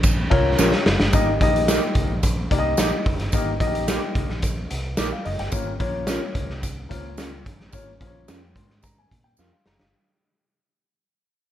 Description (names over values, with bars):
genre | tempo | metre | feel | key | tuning
uptempo 1960s-style soul | 109 BPM | 4/4 | straight | unclear | A4 = 440 Hz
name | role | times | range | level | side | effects
vintage muted fingered electric bass | bass | 0.0-9.9 s | Gb1 to Bb2 | -27 LUFS | equal | none
raw garage drum kit | drums | 0.0-9.9 s | hi-hat, kick drum, ride cymbal, snare drum | -22 LUFS | equal | none
tambourine | percussion | 0.0-9.5 s | none | -34 LUFS | right 6 dB | none
dark upright piano | accompaniment | 0.3-10.1 s | Bb3 to C6 | -25 LUFS | left 3 dB | none
mellow electric guitar | stabs | 0.6-9.5 s | Db4 to Bb4 | -27 LUFS | right 3 dB | lush chorus
room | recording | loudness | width
light reverb | none | -19 LUFS | side -11 dB against mid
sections
0.0-1.1 A section; 1.1-9.9 B section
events
drum fill 0.6-1.1, 9.4-9.9; fade-out 1.1-9.9; upright piano fill 8.3-9.9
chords
0.0 Bbm; 1.1 Eb; 5.5 Bbm/Ab